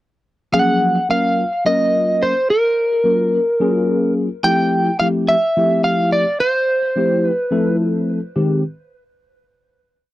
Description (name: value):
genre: jazz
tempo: 215 BPM (eighths)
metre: 7/8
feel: straight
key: unclear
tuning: A4 = 439 Hz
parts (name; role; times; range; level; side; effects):
- lightly driven lead guitar; melody; 0.5-7.8 s; Bb4 to G5; -16 LUFS; right 1 dB; none
- tine electric piano; accompaniment; 0.5-8.6 s; Eb3 to Bb4; -18 LUFS; left 1 dB; analog chorus
room: light reverb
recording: dry, close 1970s-style studio recording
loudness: -15 LUFS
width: side -16 dB against mid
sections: 0.5-8.4 groove; 8.4-10.1 final chord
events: none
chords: 0.5 Ab13sus4; 4.4 G13sus4; 8.4 Abmaj7